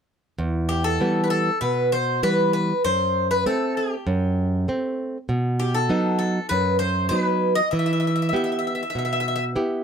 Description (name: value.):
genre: greek folk, Greek bouzouki band.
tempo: 98 BPM.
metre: 4/4.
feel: straight.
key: E harmonic minor.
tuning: A4 = 440 Hz.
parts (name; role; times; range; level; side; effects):
nylon-string guitar; accompaniment; 0.4-9.8 s; E2 to G4; -23 LUFS; right 1 dB; none.
Greek bouzouki; melody; 0.7-9.4 s; G4 to E5; -23 LUFS; left 1 dB; none.
room: light reverb.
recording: close, detailed microphones.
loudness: -20 LUFS.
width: side -7 dB against mid.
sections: 0.4-9.8 A section.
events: none.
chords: 0.4 Em; 2.8 F#dim; 5.3 B; 7.7 Em.